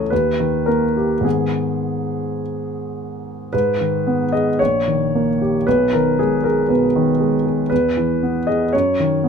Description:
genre	classical, romantic character piece for solo piano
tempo	51-60 BPM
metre	2/4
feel	rubato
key	G# minor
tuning	A4 = 440 Hz
part	clear upright piano	solo	0.0-9.3 s	A#1 to D#5	-16 LUFS	equal	none
room	little or no reverb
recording	close, detailed microphones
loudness	-16 LUFS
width	side -6 dB against mid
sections	0.0-3.5 A section; 3.5-9.3 A section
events	none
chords	0.1 D#; 1.2 G#m; 4.6 D#7/A#; 5.7 G#m/B; 7.7 E; 8.7 B/F# (rootless)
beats	0.11 | 1.25 2.40 | 3.53 4.60 | 5.66 6.69 | 7.70 8.73

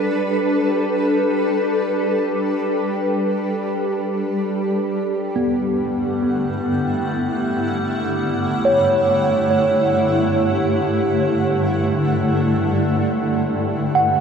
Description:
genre	ambient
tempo	free time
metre	none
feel	none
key	unclear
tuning	A4 = 440 Hz
part	granular cloud pad	sustained chords	0.0-14.2 s	G2 to F#5	-19 LUFS	equal	built-in reverb
part	overtone-sweeping drone	drone	0.0-14.2 s	G3 to G4	-27 LUFS	right 1 dB	chorus, built-in reverb
part	tine electric piano	arpeggios	5.4-14.2 s	B3 to F#5	-21 LUFS	right 1 dB	medium stereo tremolo, tape echo
room	wet huge ambient reverb, RT60 8.4 s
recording	none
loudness	-17 LUFS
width	side -6 dB against mid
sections	0.0-14.2 A section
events	fade-in on synth drone 0.0-14.2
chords	0.0 G; 5.2 D/G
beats	free time

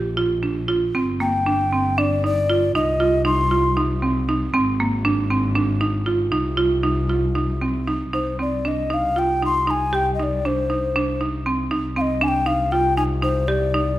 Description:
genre	contemporary instrumental, chamber music in an uneven meter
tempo	234 BPM (eighths)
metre	7/8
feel	straight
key	C minor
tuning	A4 = 439 Hz
part	buzzing marimba with hard mallets	arpeggios	0.0-14.0 s	Bb3 to G4	-21 LUFS	right 3 dB	none
part	dark double bass	bass	0.0-14.0 s	G1 to C2	-24 LUFS	left 1 dB	none
part	breathy alto ocarina	melody	1.2-3.8, 8.1-14.0 s	C5 to C6	-22 LUFS	left 2 dB	none
room	light reverb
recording	none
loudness	-18 LUFS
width	side -14 dB against mid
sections	0.0-8.1 A section; 8.1-14.0 B section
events	none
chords	0.0 Bb; 0.9 G5; 2.7 Cm; 4.5 Ab; 6.3 Cm; 8.1 Cmadd9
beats	0.15 0.42 0.68 | 0.94 1.20 1.45 1.71 1.97 2.23 2.49 | 2.74 3.00 3.25 3.51 3.77 4.02 4.27 | 4.53 4.78 5.04 5.29 5.54 5.80 6.05 | 6.31 6.56 6.82 7.08 7.34 7.60 7.86 | 8.12 8.38 8.64 8.90 9.15 9.41 9.67 | 9.92 10.18 10.43 10.69 10.94 11.20 11.45 | 11.71 11.96 12.21 12.47 12.72 12.97 13.23 | 13.48 13.74

